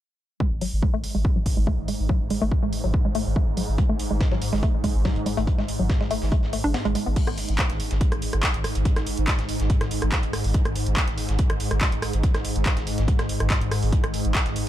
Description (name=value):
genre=driving peak-time techno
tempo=142 BPM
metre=4/4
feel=straight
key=unclear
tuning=A4 = 440 Hz
part: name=woody wave-folded pluck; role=riff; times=0.4-7.1 s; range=F#3 to D4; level=-29 LUFS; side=equal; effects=chorus, sidechain pumping, ping-pong delay
part: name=swarming drone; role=drone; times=1.1-14.7 s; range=G#2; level=-30 LUFS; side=equal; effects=built-in reverb, sidechain pumping
part: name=electronic kick drum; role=drums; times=0.4-14.4 s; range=none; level=-24 LUFS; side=equal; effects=none
part: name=saturated sub bass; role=bass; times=0.5-14.6 s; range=G#1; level=-27 LUFS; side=equal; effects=overdrive, sidechain pumping, low-pass filter
part: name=punchy analog drum machine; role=drums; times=0.6-14.6 s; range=crash cymbal, handclaps, hi-hat, rim click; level=-30 LUFS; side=right 1 dB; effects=sidechain pumping on hats, sidechain pumping on cymbals
part: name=dusty soul sampler-style drum kit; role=drums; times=3.8-14.7 s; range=hi-hat, snare drum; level=-38 LUFS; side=right 1 dB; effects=sidechain pumping on hats, high-pass filter on hats, high-pass filter on snare, high-pass filter on room
room=digital ambience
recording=dark, warm production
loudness=-21 LUFS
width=side -13 dB against mid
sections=0.4-7.2 A section; 7.2-14.7 B section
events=filter sweep on synth arpeggio sound 0.4-7.2; kick drops out 6.7-7.2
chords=0.4 N.C.; 7.2 G#5